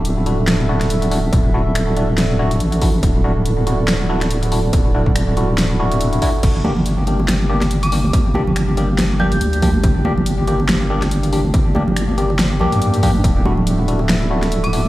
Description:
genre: deep dubstep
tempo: 141 BPM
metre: 4/4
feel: swing 56% on 16ths, half-time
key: unclear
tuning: A4 = 440 Hz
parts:
  - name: dark analog pad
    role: sustained chords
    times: 0.0-14.9 s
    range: G3 to E5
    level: -24 LUFS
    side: right 1 dB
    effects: chorus
  - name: deep soft wobble bass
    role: bass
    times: 0.0-14.9 s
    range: D1 to G2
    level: -18 LUFS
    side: equal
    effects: chorus, tube saturation
  - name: dubstep drum kit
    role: drums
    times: 0.0-14.8 s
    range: crash cymbal, finger snaps, hi-hat, snare drum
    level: -23 LUFS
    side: equal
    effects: studio reverb
  - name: overdriven tine electric piano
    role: stabs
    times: 0.3-14.8 s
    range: Bb3 to G4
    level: -23 LUFS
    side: left 1 dB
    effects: phaser, dub echo
  - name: electronic kick drum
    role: drums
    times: 1.3-13.3 s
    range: none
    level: -17 LUFS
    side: equal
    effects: distortion, studio reverb
  - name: congas and bongos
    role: percussion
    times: 6.6-14.9 s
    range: none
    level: -22 LUFS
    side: right 2 dB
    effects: none
  - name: dark detuned synth bell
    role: melody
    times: 7.8-9.5, 14.6-14.9 s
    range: D6 to G6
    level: -27 LUFS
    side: equal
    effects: chorus, dub echo
room: light reverb, digital ambience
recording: played on a big sound system in a bare room, stone room reverb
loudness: -14 LUFS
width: side -16 dB against mid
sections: 0.0-14.9 A section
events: none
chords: 0.0 Dadd9; 6.4 Gm; 13.2 Dadd9

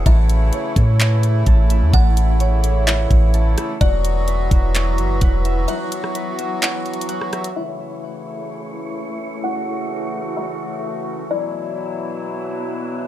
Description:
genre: hip hop, atmospheric cloud-rap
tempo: 128 BPM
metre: 4/4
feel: half-time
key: A major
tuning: A4 = 441 Hz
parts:
  - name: buzzing kalimba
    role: melody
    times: 0.0-12.2 s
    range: D5 to F#5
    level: -28 LUFS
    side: left 3 dB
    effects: low-pass filter, ping-pong delay
  - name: accordion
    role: sustained chords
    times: 0.0-13.1 s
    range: B2 to F#4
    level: -26 LUFS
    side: left 2 dB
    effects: light tremolo tuning, sidechain pumping, low-pass filter
  - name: Celtic harp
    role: arpeggios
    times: 0.0-9.2 s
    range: E4 to A5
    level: -31 LUFS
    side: right 7 dB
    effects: ping-pong delay
  - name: soft 808-style bass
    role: bass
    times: 0.0-5.7 s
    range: E1 to A2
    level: -16 LUFS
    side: equal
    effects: none
  - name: wind-like tuned noise texture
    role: texture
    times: 0.0-13.1 s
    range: F#3 to E5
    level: -30 LUFS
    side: right 2 dB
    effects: built-in reverb
  - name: trap drum kit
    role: drums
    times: 0.1-7.6 s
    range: handclaps, hi-hat, kick drum, rim click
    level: -18 LUFS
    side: equal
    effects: none
room: studio reverb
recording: none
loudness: -16 LUFS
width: side -13 dB against mid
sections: 0.0-7.6 A section; 7.6-13.1 B section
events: break 5.7-7.6; filter sweep 7.6-13.1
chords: 0.1 A; 3.8 Esus2; 7.6 A; 11.3 Esus2

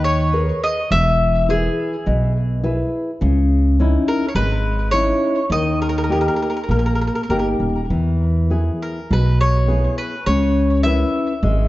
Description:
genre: fado-style ballad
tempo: 103 BPM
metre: 4/4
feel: rubato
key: unclear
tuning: A4 = 439 Hz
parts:
  - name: mandolin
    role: melody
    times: 0.0-11.7 s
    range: G#4 to E5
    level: -22 LUFS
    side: equal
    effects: tape echo
  - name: nylon-string guitar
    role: accompaniment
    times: 0.0-11.7 s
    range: B2 to B4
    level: -21 LUFS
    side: left 2 dB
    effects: none
  - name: upright bass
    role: bass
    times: 0.0-11.7 s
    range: D#1 to E2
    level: -18 LUFS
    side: right 1 dB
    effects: none
room: moderate recital hall reverb, RT60 1.4 s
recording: dark, warm production, nothing above 7.6 kHz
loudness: -16 LUFS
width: side -17 dB against mid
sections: 0.0-11.7 A section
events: none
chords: 0.0 G#madd9; 0.9 E; 3.2 C#madd9; 5.5 D#; 7.9 E; 10.3 C#m7

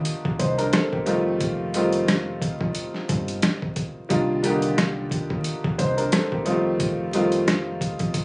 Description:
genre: hip hop, boom-bap hip-hop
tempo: 89 BPM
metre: 4/4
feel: swing 56% on 16ths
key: unclear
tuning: A4 = 440 Hz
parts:
  - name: warm upright piano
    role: accompaniment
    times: 0.0-8.2 s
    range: D3 to C5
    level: -23 LUFS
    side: equal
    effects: none
  - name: deep dub fingered electric bass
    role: bass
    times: 0.0-8.1 s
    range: F1 to Eb2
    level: -30 LUFS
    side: equal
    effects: none
  - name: boom bap sampler-style drum kit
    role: drums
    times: 0.1-8.2 s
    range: hi-hat, kick drum, rim click, snare drum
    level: -24 LUFS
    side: equal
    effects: none
room: light reverb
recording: recorded on a phone in the room, studio reverb, vinyl crackle, compression, nothing above 10.7 kHz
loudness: -21 LUFS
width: side -29 dB against mid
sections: 0.0-8.2 A section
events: none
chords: 0.0 Cm11; 1.1 F9; 4.1 Cm11; 6.5 F9

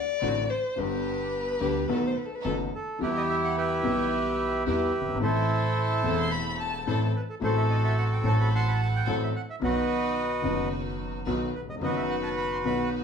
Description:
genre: tango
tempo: 109 BPM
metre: 4/4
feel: rubato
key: E harmonic minor from 3.0 s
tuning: A4 = 436 Hz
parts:
  - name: dark violin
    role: second line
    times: 0.0-7.0 s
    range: A4 to C6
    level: -30 LUFS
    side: left 4 dB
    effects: none
  - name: warm baby grand piano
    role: accompaniment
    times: 0.2-13.0 s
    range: D#1 to A4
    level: -30 LUFS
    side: left 2 dB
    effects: none
  - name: rich chamber string section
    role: stabs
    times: 0.2-13.0 s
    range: B3 to B4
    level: -38 LUFS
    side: right 1 dB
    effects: none
  - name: upright bass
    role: bass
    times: 0.2-13.0 s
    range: E1 to E2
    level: -30 LUFS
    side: right 1 dB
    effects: none
  - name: bandoneon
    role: melody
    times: 2.8-12.9 s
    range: E4 to C6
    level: -28 LUFS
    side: right 2 dB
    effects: none
room: wet large studio reverb, RT60 0.8 s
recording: band playing live in one room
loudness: -25 LUFS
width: side -6 dB against mid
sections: 0.0-3.0 A section; 3.0-13.0 B section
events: violin solo 0.0-3.0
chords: 0.0 D7; 0.8 G; 1.9 B7; 3.0 Em; 5.2 Am; 7.4 F#dim/A; 9.6 B

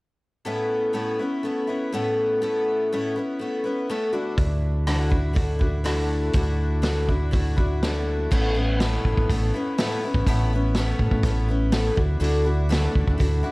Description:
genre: folk rock and heartland rock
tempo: 122 BPM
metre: 4/4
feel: straight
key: A major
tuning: A4 = 440 Hz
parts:
  - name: picked twelve-string acoustic guitar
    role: accompaniment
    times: 0.4-13.5 s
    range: A2 to F#4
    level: -25 LUFS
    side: left 1 dB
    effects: none
  - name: deep dub fingered electric bass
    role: bass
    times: 4.4-13.4 s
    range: A1 to A2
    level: -23 LUFS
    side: equal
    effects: none
  - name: vintage drum kit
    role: drums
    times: 4.4-13.3 s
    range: crash cymbal, hi-hat, kick drum, rim click, snare drum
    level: -25 LUFS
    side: equal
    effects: none
room: light reverb, small room ambience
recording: dark, warm production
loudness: -21 LUFS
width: side -24 dB against mid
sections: 0.5-8.3 A section; 8.3-13.5 B section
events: none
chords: 0.5 Aadd9; 4.1 Dadd9; 8.3 Aadd9; 12.0 Dadd9

